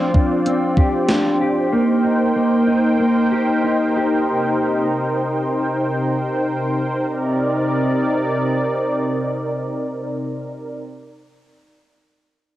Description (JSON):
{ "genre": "dream pop", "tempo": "81-95 BPM", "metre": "4/4", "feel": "straight", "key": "C minor", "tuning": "A4 = 440 Hz", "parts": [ { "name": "warm analog pad", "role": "sustained chords", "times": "0.0-10.8 s", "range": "C3 to G5", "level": "-20 LUFS", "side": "equal", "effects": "chorus, cassette tape" }, { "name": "mellow electric guitar", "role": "arpeggios", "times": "0.0-4.9 s", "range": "F3 to G4", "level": "-18 LUFS", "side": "equal", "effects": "lush chorus, cassette tape, tape echo" }, { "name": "gated 80s digital drum machine", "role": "drums", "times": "0.1-1.2 s", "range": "hi-hat, kick drum, snare drum", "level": "-17 LUFS", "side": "equal", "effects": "gated reverb, gated reverb snare" } ], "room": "moderate spring reverb, RT60 2.6 s", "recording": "home recording on cassette", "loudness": "-17 LUFS", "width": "side -14 dB against mid", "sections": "0.0-7.1 A section; 7.1-10.1 B section", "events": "slowing down 1.7-7.1", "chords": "0.0 G7sus4; 1.7 Cm7; 4.3 Eb6/C; 7.1 Cm7" }